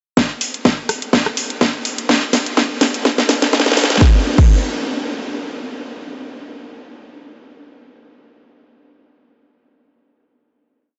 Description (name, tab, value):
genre	house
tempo	125 BPM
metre	4/4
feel	swing 55% on 16ths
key	none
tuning	none
part	electronic kick drum	drums	0.2-4.5 s	none	-16 LUFS	equal	high-pass filter on kick
part	garage drum kit	drums	0.2-4.5 s	crash cymbal, hi-hat, rim click, snare drum	-19 LUFS	equal	none
room	wet huge ambient reverb, RT60 7.0 s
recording	dreamy mix soaked in reverb, high-pass filter, nothing above 7.9 kHz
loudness	-16 LUFS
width	mono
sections	0.2-4.0 build; 4.0-5.9 final hit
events	build-up 0.2-4.0; drum fill 0.2-4.0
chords	none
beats	| 0.17 0.65 1.13 1.61 | 2.09 2.57 3.05 3.53 | 4.01